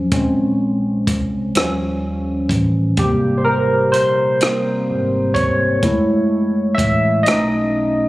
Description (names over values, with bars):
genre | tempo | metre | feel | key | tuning
slow six-eight R&B | 42 BPM (dotted quarters) | 6/8 | straight | unclear | A4 = 440 Hz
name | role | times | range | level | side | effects
barky tine electric piano | accompaniment | 0.0-8.1 s | C3 to Fb5 | -16 LUFS | equal | wide subtle chorus
deep dub picked electric bass | bass | 0.0-8.1 s | Gb1 to Eb2 | -24 LUFS | equal | none
compact cocktail drum kit | drums | 0.1-7.5 s | hi-hat, kick drum, rim click | -22 LUFS | equal | none
room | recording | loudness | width
moderate echo chamber reverb, RT60 2.4 s | recorded on a phone in the room, club reverb, compression | -15 LUFS | side -18 dB against mid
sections
0.0-8.1 A section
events
tine electric piano solo 0.0-8.1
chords
0.1 Bbm9; 1.5 Eb9; 3.0 Abmaj7; 5.8 Gbm7; 7.3 B9